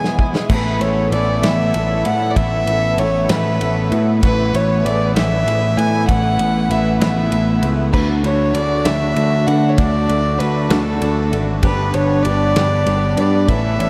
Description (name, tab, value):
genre	folk rock and heartland rock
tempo	65 BPM (dotted quarters)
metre	6/8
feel	straight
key	unclear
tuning	A4 = 440 Hz
part	warm fiddle	melody	0.0-13.9 s	A4 to G#5	-22 LUFS	equal	tape echo
part	picked steel-string acoustic guitar	accompaniment	0.0-13.9 s	G2 to G4	-28 LUFS	equal	none
part	accordion	sustained chords	0.0-13.9 s	G#3 to B4	-31 LUFS	equal	light tremolo tuning
part	twelve-string electric guitar	riff	0.0-13.9 s	E2 to G4	-25 LUFS	equal	analog chorus
part	natural country drum kit	drums	0.0-13.9 s	crash cymbal, kick drum, ride cymbal, snare drum	-25 LUFS	equal	none
part	bright upright piano	accompaniment	0.5-13.9 s	B3 to D5	-34 LUFS	equal	none
part	picked electric bass	bass	0.5-13.9 s	G1 to D3	-21 LUFS	equal	none
room	moderate huge ambient reverb, RT60 7.9 s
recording	dreamy mix soaked in reverb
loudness	-16 LUFS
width	mono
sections	0.5-13.9 A section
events	break 0.0-0.5; drum fill 0.0-0.5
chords	0.5 Asus2; 7.9 D; 11.6 G